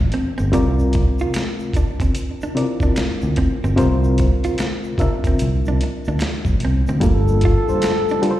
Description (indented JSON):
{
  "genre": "R&B, neo-soul",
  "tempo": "74 BPM",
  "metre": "4/4",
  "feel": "swing 62% on 16ths",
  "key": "unclear",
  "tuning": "A4 = 441 Hz",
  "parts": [
    { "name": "bright reed electric piano", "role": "accompaniment", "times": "0.0-8.4 s", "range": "C3 to E5", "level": "-22 LUFS", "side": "left 2 dB", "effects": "tremolo, slapback echo" },
    { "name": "fingered electric bass", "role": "bass", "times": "0.0-7.7 s", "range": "G1 to D2", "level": "-18 LUFS", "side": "equal", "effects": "none" },
    { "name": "archtop guitar, miked and amplified", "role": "second line", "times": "0.1-8.3 s", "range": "C4 to F4", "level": "-27 LUFS", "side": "right 3 dB", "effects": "slapback echo, analog delay" },
    { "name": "boom bap sampler-style drum kit", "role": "drums", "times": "0.1-8.4 s", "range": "hi-hat, kick drum, snare drum", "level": "-20 LUFS", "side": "equal", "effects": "none" },
    { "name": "tube shaker and finger snaps", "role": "percussion", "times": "0.4-8.2 s", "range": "none", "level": "-40 LUFS", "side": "right 2 dB", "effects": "none" },
    { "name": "dark flugelhorn", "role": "melody", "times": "7.0-8.4 s", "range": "A4", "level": "-21 LUFS", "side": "left 1 dB", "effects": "slapback echo" }
  ],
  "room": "light reverb, studio reverb",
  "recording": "live gig heard through the venue's PA, recital hall reverb",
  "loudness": "-16 LUFS",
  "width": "side -14 dB against mid",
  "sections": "0.0-7.0 A section; 7.0-8.4 B section",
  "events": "none",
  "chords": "0.0 G9sus4; 0.5 C9sus4; 7.0 Gm9"
}